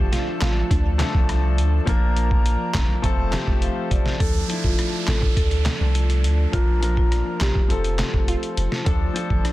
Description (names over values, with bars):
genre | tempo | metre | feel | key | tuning
dancehall | 103 BPM | 4/4 | straight | D minor | A4 = 440 Hz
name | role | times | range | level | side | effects
glassy wavetable pluck | second line | 0.0-1.8, 8.3-9.5 s | D4 to A4 | -32 LUFS | right 3 dB | chorus, digital delay
warm concert grand piano | accompaniment | 0.0-9.5 s | F3 to A5 | -28 LUFS | left 2 dB | none
lush unison pad | sustained chords | 0.0-9.5 s | F3 to Bb4 | -33 LUFS | right 1 dB | chorus, sidechain pumping
punchy sub bass | bass | 0.0-9.4 s | F1 to D2 | -21 LUFS | equal | none
trip hop sampler-style drum kit | drums | 0.1-9.5 s | handclaps, hi-hat, kick drum, rim click, snare drum | -22 LUFS | equal | none
marimba with medium mallets | melody | 4.2-8.1 s | F4 to A4 | -30 LUFS | left 1 dB | digital delay
downlifter | sound effects | 4.2-8.9 s | none | -34 LUFS | right 4 dB | none
room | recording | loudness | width
digital ambience | dense, heavily limited modern master | -18 LUFS | side -16 dB against mid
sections
0.0-4.2 A section; 4.2-9.5 B section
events
grand piano fill 3.0-4.2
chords
0.0 Dm; 1.9 Bb; 3.0 F; 4.2 Dm; 6.5 Bb; 7.7 F; 8.9 Dm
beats
0.13 0.71 1.29 | 1.87 2.46 3.04 3.62 | 4.20 4.79 5.37 5.95 | 6.53 7.12 7.70 8.28 | 8.86 9.45